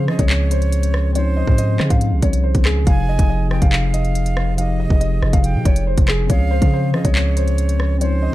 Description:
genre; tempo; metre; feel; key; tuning
hip hop, drill; 140 BPM; 4/4; half-time; unclear; A4 = 444 Hz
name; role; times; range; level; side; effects
dark grand piano; melody; 0.0-8.3 s; Ab4 to F5; -27 LUFS; right 1 dB; none
breathy concert flute; second line; 0.0-8.3 s; C5 to Ab5; -29 LUFS; right 5 dB; digital delay
mellow tine electric piano; accompaniment; 0.0-8.3 s; C3 to Ab4; -23 LUFS; left 2 dB; medium stereo tremolo
long sustained 808-style bass; bass; 0.0-8.3 s; F1 to F3; -18 LUFS; equal; none
drill drum kit; drums; 0.1-8.1 s; handclaps, hi-hat, kick drum, rim click; -18 LUFS; equal; none
room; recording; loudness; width
little or no reverb; dark, warm production; -15 LUFS; side -16 dB against mid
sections
0.0-8.3 A section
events
none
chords
0.0 Dbmaj7; 2.9 Fm7; 6.3 Dbmaj7

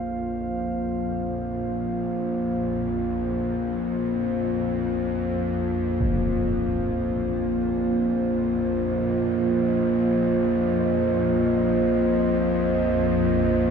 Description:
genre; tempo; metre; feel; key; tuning
dark ambient drone; free time; none; none; unclear; A4 = 441 Hz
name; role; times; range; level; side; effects
dark analog pad; sustained chords; 0.0-13.7 s; Bb3 to F5; -23 LUFS; equal; chorus, shimmer reverb
dark detuned synth bell; arpeggios; 0.0-13.7 s; none; barely audible; none; none
bowed-like drone; drone; 0.0-13.7 s; Bb1 to F2; -27 LUFS; left 2 dB; built-in reverb
impact; percussion; 6.0-6.2 s; none; -32 LUFS; equal; low-pass filter on sfx
room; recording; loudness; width
wet cathedral reverb, RT60 6.0 s; in a vast, echoing space, cassette tape; -22 LUFS; side -6 dB against mid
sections
0.0-13.7 A section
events
none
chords
0.0 Bbsus2

